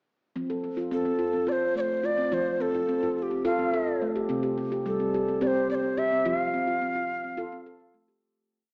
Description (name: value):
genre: world meditative, meditative tuned percussion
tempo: 214 BPM (eighths)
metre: 7/8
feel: straight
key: F major pentatonic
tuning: A4 = 440 Hz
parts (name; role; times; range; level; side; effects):
- handpan; arpeggios; 0.4-8.2 s; C3 to A4; -31 LUFS; equal; tape echo
- mellow Native American-style cedar flute; melody; 0.9-7.9 s; G4 to F5; -30 LUFS; equal; none
room: wet scoring stage reverb, RT60 1.8 s, small room reverb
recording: small speaker sound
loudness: -27 LUFS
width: mono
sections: 0.4-8.2 A section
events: fade-out 6.3-8.2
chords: 0.4 F; 4.3 C5; 6.3 F